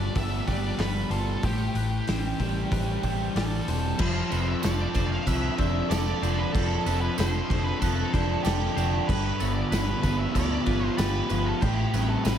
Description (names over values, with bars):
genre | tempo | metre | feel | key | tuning
rock, shoegaze and dream pop | 94 BPM | 4/4 | straight | unclear | A4 = 440 Hz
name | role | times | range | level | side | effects
octave-fuzz lead guitar | melody | 0.0-12.4 s | G4 to F5 | -34 LUFS | right 1 dB | distortion, analog delay
twangy electric guitar | arpeggios | 0.0-12.4 s | C4 to C6 | -40 LUFS | left 6 dB | wide subtle chorus, analog delay
overdriven semi-hollow guitar | riff | 0.0-12.4 s | G2 to A4 | -31 LUFS | right 7 dB | reverse reverb
thick fuzz guitar | riff | 0.0-12.4 s | G2 to A4 | -31 LUFS | left 8 dB | distortion, analog chorus
vintage muted fingered electric bass | bass | 0.0-12.4 s | E1 to D2 | -29 LUFS | equal | none
loose indie drum kit | drums | 0.2-12.4 s | crash cymbal, hi-hat, kick drum, snare drum | -30 LUFS | equal | none
tambourine | percussion | 4.3-12.4 s | none | -44 LUFS | right 11 dB | none
room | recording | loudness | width
moderate plate reverb, RT60 1.9 s, studio reverb | dreamy mix soaked in reverb | -24 LUFS | side -9 dB against mid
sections
0.0-4.0 A section; 4.0-12.4 B section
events
none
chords
0.0 G7; 1.4 Am7; 4.0 F6; 9.1 G7; 11.6 Am7